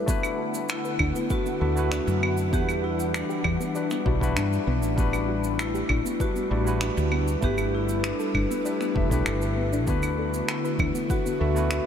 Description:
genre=sunset chillout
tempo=98 BPM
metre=4/4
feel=straight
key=D major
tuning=A4 = 442 Hz
part: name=bright tine electric piano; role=accompaniment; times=0.0-11.9 s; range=G3 to F#5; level=-30 LUFS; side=moving between left 5 dB and right 6 dB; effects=auto-pan, ping-pong delay
part: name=airy breathy pad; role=sustained chords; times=0.0-11.9 s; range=D3 to F#5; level=-32 LUFS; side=left 1 dB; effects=chorus
part: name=soft round pluck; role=arpeggios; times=0.0-11.9 s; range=B3 to F#5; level=-34 LUFS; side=left 1 dB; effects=chorus, ping-pong delay
part: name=woody fretless electric bass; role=bass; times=0.0-11.8 s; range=E1 to G2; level=-27 LUFS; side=equal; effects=analog chorus
part: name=cabasa, claves and finger snaps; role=drums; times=0.1-11.8 s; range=none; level=-33 LUFS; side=right 1 dB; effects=none
part: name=electronic kick drum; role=drums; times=0.1-11.2 s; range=none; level=-28 LUFS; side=equal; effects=none
part: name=vibraphone with medium hard mallets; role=melody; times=0.7-11.9 s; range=D4 to G4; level=-32 LUFS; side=left 4 dB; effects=ping-pong delay
part: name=congas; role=percussion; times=10.8-10.9 s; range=none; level=-40 LUFS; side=right 4 dB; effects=none
room=moderate huge ambient reverb, RT60 7.5 s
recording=dreamy mix soaked in reverb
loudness=-23 LUFS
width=side -8 dB against mid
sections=0.1-11.9 A section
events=none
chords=0.1 D6; 2.5 A13sus4; 7.4 G69; 9.9 D6

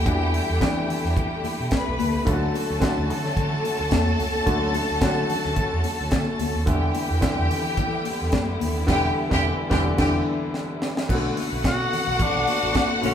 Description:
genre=disco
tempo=109 BPM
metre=4/4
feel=swing 56% on 16ths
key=unclear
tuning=A4 = 440 Hz
part: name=clear studio string section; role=second line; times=0.0-13.1 s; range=F#4 to B5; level=-27 LUFS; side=left 1 dB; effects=none
part: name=clear concert grand piano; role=accompaniment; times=0.0-13.1 s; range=C#3 to A4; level=-28 LUFS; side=left 1 dB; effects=none
part: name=clear studio string section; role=sustained chords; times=0.0-13.1 s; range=D3 to F#4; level=-32 LUFS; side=left 1 dB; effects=none
part: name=picked electric bass with an envelope filter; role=bass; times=0.0-13.1 s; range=E1 to E3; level=-27 LUFS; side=right 1 dB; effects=none
part: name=tight funk drum kit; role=drums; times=0.1-13.1 s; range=crash cymbal, hi-hat, kick drum, snare drum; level=-27 LUFS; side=right 1 dB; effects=none
part: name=congas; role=percussion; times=0.1-13.1 s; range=none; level=-32 LUFS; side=left 5 dB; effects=none
part: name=raspy tenor saxophone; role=melody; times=11.7-13.1 s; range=C#4 to F#4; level=-26 LUFS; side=equal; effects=none
room=wet large studio reverb, RT60 1.4 s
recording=band playing live in one room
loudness=-20 LUFS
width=side -9 dB against mid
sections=0.0-11.1 A section; 11.1-13.1 B section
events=band accent 8.9-11.1; drum fill 10.5-11.1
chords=0.0 Em7; 2.3 Dmaj7; 6.7 Em7; 11.1 Bm9

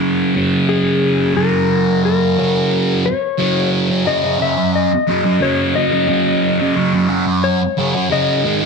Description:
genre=rock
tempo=89 BPM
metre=4/4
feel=straight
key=unclear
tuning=A4 = 435 Hz
part: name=thick fuzz guitar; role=riff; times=0.0-8.7 s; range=F#2 to G#3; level=-15 LUFS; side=right 2 dB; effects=distortion, phaser
part: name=electric slide guitar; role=melody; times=0.7-8.6 s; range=G#4 to E5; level=-19 LUFS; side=left 6 dB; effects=tape echo
room=moderate echo chamber reverb, RT60 1.3 s, digital ambience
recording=none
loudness=-13 LUFS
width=side -4 dB against mid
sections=0.0-3.4 A section; 3.4-8.7 B section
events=none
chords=0.0 F#5

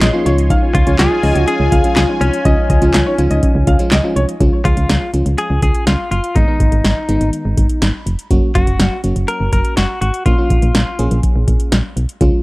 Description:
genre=synth-pop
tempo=123 BPM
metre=4/4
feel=straight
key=Db major, Db mixolydian from 4.4 s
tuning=A4 = 440 Hz
part: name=clear baby grand piano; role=second line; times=0.0-4.2 s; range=Db5 to F5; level=-23 LUFS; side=equal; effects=analog delay
part: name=FM electric piano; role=accompaniment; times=0.0-12.4 s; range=Eb3 to Cb6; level=-21 LUFS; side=equal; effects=chorus
part: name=phased analog pad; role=sustained chords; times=0.0-4.4 s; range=F4 to C6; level=-22 LUFS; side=equal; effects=phaser, chorus
part: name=soft round pluck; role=arpeggios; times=0.0-4.3 s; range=Db4 to F4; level=-24 LUFS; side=left 2 dB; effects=none
part: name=solid FM bass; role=bass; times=0.0-12.3 s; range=F1 to Db2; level=-15 LUFS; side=equal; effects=none
part: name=electro analog drum machine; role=drums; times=0.0-12.3 s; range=handclaps, hi-hat, kick drum, snare drum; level=-15 LUFS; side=equal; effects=overdrive
part: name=direct-recorded clean electric guitar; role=melody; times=0.7-11.2 s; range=Db4 to Bb4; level=-21 LUFS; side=left 2 dB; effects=analog delay
room=digital ambience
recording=dry, gritty hardware recording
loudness=-12 LUFS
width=side -21 dB against mid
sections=0.0-4.4 A section; 4.4-12.4 B section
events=FM electric piano fill 7.6-8.3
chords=0.3 Db; 6.4 Abm; 8.3 Gb; 10.3 Bbm

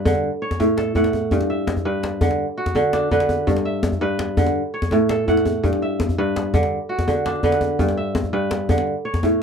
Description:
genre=west african traditional, West African string and xylophone music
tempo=111 BPM (dotted quarters)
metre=12/8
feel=straight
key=G lydian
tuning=A4 = 439 Hz
part: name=kora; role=arpeggios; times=0.0-9.4 s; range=G2 to F#5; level=-20 LUFS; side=right 1 dB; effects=none
part: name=djembe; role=percussion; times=0.1-9.3 s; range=none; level=-22 LUFS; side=left 1 dB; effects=none
room=little or no reverb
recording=dry, close 1970s-style studio recording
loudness=-18 LUFS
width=side -6 dB against mid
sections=0.0-9.4 A section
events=none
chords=0.2 A; 1.3 G; 2.4 D; 3.5 G; 4.6 A; 5.6 G; 6.7 D; 7.8 G; 8.9 A

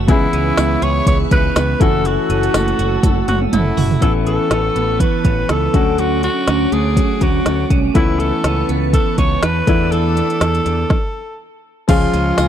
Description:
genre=1980s-style pop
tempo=122 BPM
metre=4/4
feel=swing 55% on 16ths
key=unclear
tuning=A4 = 440 Hz
part: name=clear concert grand piano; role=accompaniment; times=0.0-12.5 s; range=D3 to G#4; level=-22 LUFS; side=left 8 dB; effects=none
part: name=ensemble organ-string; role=sustained chords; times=0.0-12.5 s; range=C#4 to E6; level=-24 LUFS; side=equal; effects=ensemble chorus
part: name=twelve-string electric guitar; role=riff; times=0.0-12.5 s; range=E3 to A4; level=-22 LUFS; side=right 7 dB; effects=wide subtle chorus
part: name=modern bright picked electric bass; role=bass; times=0.0-12.5 s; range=F#1 to E2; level=-19 LUFS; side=equal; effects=none
part: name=raspy alto saxophone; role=melody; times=0.1-12.5 s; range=E4 to C#5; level=-21 LUFS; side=equal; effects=tape echo
part: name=organic electronic drum kit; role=drums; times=0.1-12.5 s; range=crash cymbal, hi-hat, kick drum, snare drum, tambourine, toms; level=-17 LUFS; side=equal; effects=overdrive
room=little or no reverb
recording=dry, close 1970s-style studio recording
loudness=-13 LUFS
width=side -10 dB against mid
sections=0.0-4.0 A section; 4.0-11.9 B section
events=drum fill 3.0-4.0; stop 10.9-11.9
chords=0.1 C#m7; 1.8 F#m7; 4.0 Aadd9; 5.7 Dmaj7; 8.0 Aadd9/C#; 9.7 E7sus4; 11.9 C#

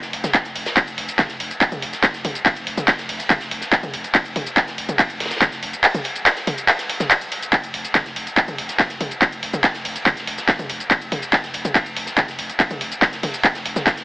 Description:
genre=driving peak-time techno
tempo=142 BPM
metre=4/4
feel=straight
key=unclear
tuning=A4 = 440 Hz
part: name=saturated sub bass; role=bass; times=0.0-14.0 s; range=F1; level=-41 LUFS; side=equal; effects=overdrive, sidechain pumping, low-pass filter
part: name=loose indie drum kit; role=drums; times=0.0-14.0 s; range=hi-hat, ride cymbal, snare drum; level=-30 LUFS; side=left 1 dB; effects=high-pass filter on cymbals, high-pass filter on hats, high-pass filter on snare, high-pass filter on room
part: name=techno drum kit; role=drums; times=0.0-14.0 s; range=handclaps, hi-hat, ride cymbal, shaker, toms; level=-18 LUFS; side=equal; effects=none
part: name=electronic kick drum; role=drums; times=0.3-14.0 s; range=none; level=-24 LUFS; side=equal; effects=none
room=light reverb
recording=heavily compressed radio sound, AM radio sound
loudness=-17 LUFS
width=side -22 dB against mid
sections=0.0-14.0 A section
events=none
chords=none

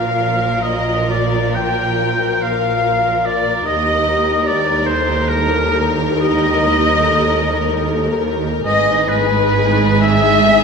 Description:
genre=classical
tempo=42-51 BPM (dotted quarters)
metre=12/8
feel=rubato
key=unclear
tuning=A4 = 438 Hz
part: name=rich studio violin section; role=melody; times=0.0-10.6 s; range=G#4 to Bb4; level=-24 LUFS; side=left 7 dB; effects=none
part: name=clear oboe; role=second line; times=0.0-10.6 s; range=Bb4 to G5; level=-19 LUFS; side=right 1 dB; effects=none
part: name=silver concert flute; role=second line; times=0.0-10.6 s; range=Bb4 to G5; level=-24 LUFS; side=left 2 dB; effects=none
part: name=warm studio violin section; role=second line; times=0.0-10.6 s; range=Bb4 to G5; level=-23 LUFS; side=left 3 dB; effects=none
part: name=warm studio viola section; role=accompaniment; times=0.0-10.6 s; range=F3 to F4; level=-23 LUFS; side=right 1 dB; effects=none
part: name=rich studio cello section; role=bass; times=0.0-10.6 s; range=Eb2 to Bb2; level=-23 LUFS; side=right 2 dB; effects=none
part: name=warm studio double bass section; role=bass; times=0.0-10.6 s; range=G#1 to Eb2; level=-22 LUFS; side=right 5 dB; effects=none
part: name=warm French horn section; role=sustained chords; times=1.1-10.6 s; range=G4 to B4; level=-22 LUFS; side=left 5 dB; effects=none
room=wet scoring stage reverb, RT60 1.8 s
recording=minimal, uncompressed stereo recording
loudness=-13 LUFS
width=side -5 dB against mid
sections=0.0-10.6 A section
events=none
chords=0.0 Bb; 3.7 Eb; 8.6 G#m

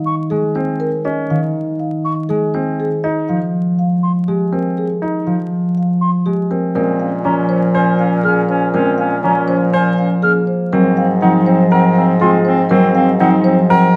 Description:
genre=classical, minimalist pattern music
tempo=121 BPM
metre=4/4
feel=straight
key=Bb minor from 6.8 s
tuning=A4 = 445 Hz
part: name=marimba with soft mallets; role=melody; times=0.0-14.0 s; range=G4 to Ab5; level=-24 LUFS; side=equal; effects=none
part: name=concert harp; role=accompaniment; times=0.0-14.0 s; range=Eb3 to Bb3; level=-18 LUFS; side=equal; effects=none
part: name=mellow hollow silver concert flute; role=arpeggios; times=0.1-13.3 s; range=Gb5 to F6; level=-22 LUFS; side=equal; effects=none
part: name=clear grand piano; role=arpeggios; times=0.6-14.0 s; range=C4 to C5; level=-22 LUFS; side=equal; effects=none
part: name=mellow clarinet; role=second line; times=6.8-13.9 s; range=C4 to Db4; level=-23 LUFS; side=equal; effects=none
part: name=clear bassoon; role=bass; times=6.8-14.0 s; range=Ab2 to Bb2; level=-23 LUFS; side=equal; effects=none
room=moderate large studio reverb, RT60 1.0 s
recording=vinyl crackle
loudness=-15 LUFS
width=mono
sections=0.0-6.8 A section; 6.8-14.0 B section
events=none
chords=0.0 Dbadd9; 2.8 Fm7; 6.8 Bbm7; 10.7 Ab9

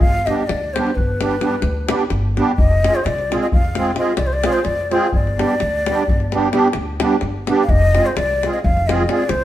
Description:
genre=balkan folk, Balkan wedding band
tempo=258 BPM (eighths)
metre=11/8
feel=straight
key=unclear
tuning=A4 = 440 Hz
part: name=breathy ney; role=melody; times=0.0-9.4 s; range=B4 to F5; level=-21 LUFS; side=left 1 dB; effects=none
part: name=upright bass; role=bass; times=0.0-9.4 s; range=F1 to D2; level=-21 LUFS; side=equal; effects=none
part: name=davul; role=percussion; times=0.0-9.4 s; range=none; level=-22 LUFS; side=left 1 dB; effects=none
part: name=musette accordion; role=accompaniment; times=0.3-9.2 s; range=G3 to Ab4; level=-20 LUFS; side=right 2 dB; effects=none
room=wet stone room reverb, RT60 1.2 s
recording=band playing live in one room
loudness=-15 LUFS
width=side -13 dB against mid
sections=0.0-9.4 A section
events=none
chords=0.0 G; 2.6 Fm; 5.1 G; 7.7 Fm

